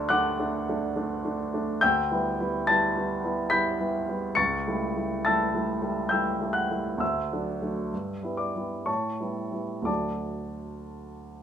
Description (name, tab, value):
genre	classical, romantic nocturne for solo piano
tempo	56-73 BPM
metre	3/4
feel	rubato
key	D major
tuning	A4 = 441 Hz
part	warm grand piano	solo	0.0-11.4 s	C#2 to C#7	-25 LUFS	equal	none
room	moderate large studio reverb, RT60 0.8 s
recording	minimal, uncompressed stereo recording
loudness	-25 LUFS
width	side -9 dB against mid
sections	0.0-11.4 A section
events	none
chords	0.0 D; 1.8 Em7/D; 4.4 A7/C#; 7.0 D; 7.9 Em/G; 8.9 A9; 9.9 D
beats	0.12 0.97 | 1.82 2.68 3.52 | 4.38 5.25 6.11 | 7.01 7.92 8.88 | 9.88 10.95